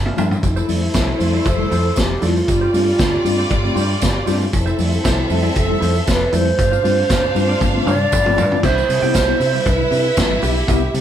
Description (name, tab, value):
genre	disco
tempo	117 BPM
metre	4/4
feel	straight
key	C major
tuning	A4 = 438 Hz
part	mellow tine electric piano	accompaniment	0.0-11.0 s	G2 to F4	-24 LUFS	left 3 dB	medium stereo tremolo
part	fingered electric bass	bass	0.0-11.0 s	F1 to C3	-20 LUFS	equal	none
part	semi-hollow electric guitar	accompaniment	0.1-11.0 s	D4 to G5	-29 LUFS	right 2 dB	none
part	vintage drum kit	drums	0.1-11.0 s	crash cymbal, hi-hat, kick drum, snare drum, toms	-21 LUFS	equal	none
part	tambourine	percussion	0.2-11.0 s	none	-34 LUFS	right 5 dB	none
part	warm studio violin section	second line	0.4-11.0 s	G3 to F5	-24 LUFS	equal	none
part	mellow hollow alto flute	melody	0.5-11.0 s	E4 to D5	-20 LUFS	right 2 dB	none
room	moderate large studio reverb, RT60 1.0 s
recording	band playing live in one room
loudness	-14 LUFS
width	side -10 dB against mid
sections	0.4-8.6 A section; 8.6-11.0 B section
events	drum fill 0.0-0.4, 7.6-8.6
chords	0.4 Fmaj7; 2.5 G7sus4; 4.5 Fmaj7; 6.6 G7sus4; 8.6 Cmaj7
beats	| 0.43 0.95 1.46 1.97 | 2.48 3.00 3.51 4.02 | 4.54 5.05 5.56 6.07 | 6.59 7.10 7.61 8.12 | 8.63 9.15 9.66 10.17 | 10.68